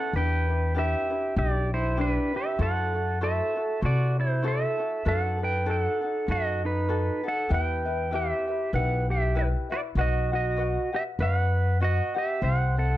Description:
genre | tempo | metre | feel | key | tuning
Hawaiian | 98 BPM | 4/4 | swing 57% on 8ths | E minor | A4 = 437 Hz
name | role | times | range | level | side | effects
pedal steel guitar | melody | 0.0-13.0 s | D4 to G5 | -28 LUFS | right 2 dB | plate reverb
ukulele | accompaniment | 0.0-13.0 s | C4 to F#5 | -33 LUFS | left 4 dB | plate reverb
upright bass | bass | 0.1-13.0 s | B1 to C3 | -26 LUFS | equal | none
room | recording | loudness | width
moderate studio ambience, RT60 0.5 s | dark, warm production | -24 LUFS | side -14 dB against mid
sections
0.1-13.0 A section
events
none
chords
0.1 Em7; 2.6 F#m7b5; 5.1 B7/F#; 7.5 Em; 10.0 B; 12.4 C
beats
| 0.14 0.75 1.37 1.98 | 2.60 3.21 3.82 4.44 | 5.05 5.67 6.28 6.89 | 7.51 8.12 8.73 9.35 | 9.96 10.58 11.19 11.80 | 12.42

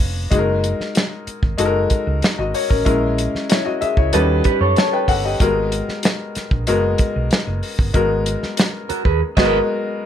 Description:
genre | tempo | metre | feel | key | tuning
lush 1970s-style soul | 94 BPM | 4/4 | straight | G# minor | A4 = 440 Hz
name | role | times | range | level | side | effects
warm grand piano | accompaniment | 0.0-10.1 s | G3 to A5 | -20 LUFS | left 3 dB | none
hollow-body short-scale fingered electric bass | bass | 0.0-9.6 s | E#1 to F#2 | -22 LUFS | right 1 dB | none
warm soul drum kit | drums | 0.0-9.6 s | crash cymbal, hi-hat, kick drum, snare drum | -18 LUFS | equal | none
electric guitar through a small old amp | riff | 4.1-9.6 s | F#4 to D#5 | -20 LUFS | right 5 dB | none
room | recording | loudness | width
light reverb | none | -16 LUFS | side -9 dB against mid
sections
0.0-10.1 A section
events
band accent 9.2-10.1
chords
0.3 F#69; 2.9 A#m7b5; 4.1 D#7alt; 5.4 G#m9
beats
| 0.32 0.95 1.59 2.22 | 2.86 3.49 4.13 4.76 | 5.40 6.04 6.67 7.31 | 7.94 8.58 9.21 9.85

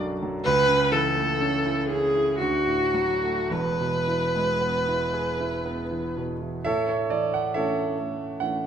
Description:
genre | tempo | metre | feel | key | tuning
classical, romantic duo for viola and grand piano | 51-70 BPM | 3/4 | rubato | A major | A4 = 444 Hz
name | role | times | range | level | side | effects
clear grand piano | accompaniment | 0.0-8.7 s | E1 to F#5 | -26 LUFS | right 2 dB | none
rich viola | melody | 0.4-6.2 s | F#4 to B4 | -23 LUFS | equal | none
room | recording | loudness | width
wet recital hall reverb, RT60 1.4 s | none | -22 LUFS | side -8 dB against mid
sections
0.0-6.7 A section; 6.7-8.7 B section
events
none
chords
0.4 A/C#; 2.4 D; 3.5 E; 6.7 A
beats
| 0.45 1.40 2.38 | 3.51 4.61 5.65 | 6.65 7.54 8.41

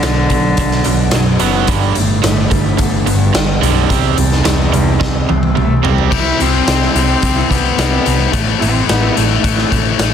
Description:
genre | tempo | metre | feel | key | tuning
quiet-loud alternative rock | 108 BPM | 4/4 | straight | unclear | A4 = 440 Hz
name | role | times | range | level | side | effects
rich cello | melody | 0.0-10.1 s | E2 to E4 | -19 LUFS | left 1 dB | none
electric guitar through a small old amp | arpeggios | 0.0-9.9 s | G2 to E4 | -22 LUFS | left 1 dB | spring reverb
overdriven electric guitar | riff | 0.0-6.1 s | G2 to C4 | -18 LUFS | right 11 dB | none
hollow-body short-scale picked electric bass | bass | 0.0-10.1 s | F#1 to C2 | -17 LUFS | equal | none
raw garage drum kit | drums | 0.0-10.1 s | crash cymbal, hi-hat, kick drum, snare drum, toms | -17 LUFS | equal | none
cranked stack guitar | riff | 6.1-10.1 s | A2 to C4 | -17 LUFS | left 15 dB | overdrive
room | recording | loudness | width
light reverb, small room ambience | dense, heavily limited modern master | -11 LUFS | side -8 dB against mid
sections
0.0-6.1 A section; 6.1-10.1 B section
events
drum fill 5.0-6.1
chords
0.0 Bm; 1.7 G; 3.9 C; 8.3 Am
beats
0.03 0.58 1.14 | 1.69 2.25 2.80 3.35 | 3.90 4.46 5.01 5.57 | 6.12 6.67 7.23 7.78 | 8.34 8.89 9.45 10.00

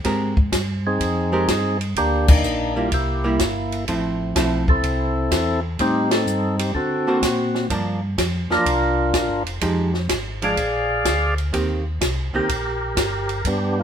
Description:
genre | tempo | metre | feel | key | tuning
soul jazz organ trio | 125 BPM | 4/4 | swing 68% on 8ths | unclear | A4 = 440 Hz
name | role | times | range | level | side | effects
archtop guitar, miked and amplified | accompaniment | 0.0-12.5 s | D3 to Bb4 | -24 LUFS | right 2 dB | none
mellow tonewheel organ | bass | 0.0-13.8 s | F1 to D3 | -25 LUFS | equal | chorus vibrato, slow rotary speaker
compact cocktail drum kit | drums | 0.0-13.6 s | crash cymbal, hi-hat, kick drum, ride cymbal, snare drum | -22 LUFS | equal | none
percussive tonewheel organ | melody | 0.9-13.8 s | Bb3 to F5 | -21 LUFS | equal | slow rotary speaker
room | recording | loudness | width
moderate studio reverb, RT60 0.8 s | minimal, uncompressed stereo recording | -18 LUFS | side -8 dB against mid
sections
0.0-13.8 A section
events
band accent 2.2, 6.0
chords
0.0 Abmaj9; 2.0 Gm; 2.9 C7; 3.9 Fmaj7; 5.8 Am7b5; 6.7 D7b13; 7.7 Gm7; 9.6 Fm9; 10.6 Bb7; 11.5 Eb6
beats
| 0.05 0.53 1.01 1.48 | 1.96 2.44 2.92 3.40 | 3.88 4.36 4.83 5.31 | 5.79 6.27 6.75 7.22 | 7.70 8.18 8.66 9.14 | 9.62 10.09 10.57 11.05 | 11.53 12.01 12.49 12.96 | 13.44

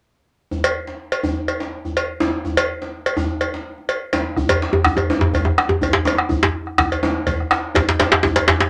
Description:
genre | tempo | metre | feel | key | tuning
west african traditional, West African drum ensemble | 124 BPM | 4/4 | straight | none | none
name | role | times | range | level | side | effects
djembe | percussion | 0.5-8.7 s | none | -25 LUFS | equal | none
cowbell | percussion | 0.6-8.5 s | none | -24 LUFS | equal | none
bombo | percussion | 4.4-8.7 s | none | -23 LUFS | equal | none
djembe | percussion | 4.5-8.7 s | none | -19 LUFS | equal | none
room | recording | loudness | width
wet club reverb, RT60 0.6 s | none | -20 LUFS | mono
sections
0.5-4.4 A section; 4.4-8.7 B section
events
none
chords
none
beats
| 0.51 0.99 1.47 1.96 | 2.44 2.92 3.41 3.89 | 4.38 4.86 5.34 5.83 | 6.31 6.79 7.27 7.76 | 8.24

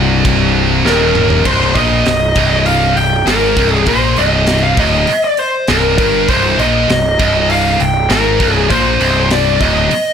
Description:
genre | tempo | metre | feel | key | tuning
heavy metal | 100 BPM | 4/4 | straight | C minor | A4 = 440 Hz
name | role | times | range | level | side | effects
crunchy overdriven guitar | riff | 0.0-1.4 s | C2 to Eb2 | -20 LUFS | equal | none
heavy high-gain guitar | riff | 0.0-9.9 s | C2 to Bb2 | -16 LUFS | right 12 dB | distortion
scooped high-gain guitar | riff | 0.0-9.9 s | C2 to Bb2 | -18 LUFS | left 10 dB | distortion
fuzz picked electric bass | bass | 0.0-9.9 s | C1 to Bb1 | -17 LUFS | equal | overdrive
tight metal drum kit | drums | 0.2-10.0 s | china cymbal, crash cymbal, hi-hat, kick drum, snare drum, toms | -20 LUFS | equal | none
high-gain lead guitar | melody | 0.9-10.1 s | Bb4 to G5 | -14 LUFS | equal | distortion
room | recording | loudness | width
light reverb, studio reverb | blown-out, overdriven recording, overdrive | -10 LUFS | side -7 dB against mid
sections
0.0-1.5 A section; 1.5-10.1 B section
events
drum fill 0.9-1.5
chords
0.0 Cm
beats
0.25 0.85 | 1.46 2.06 2.67 3.27 | 3.87 4.48 5.08 5.68 | 6.29 6.89 7.49 8.10 | 8.70 9.30 9.90

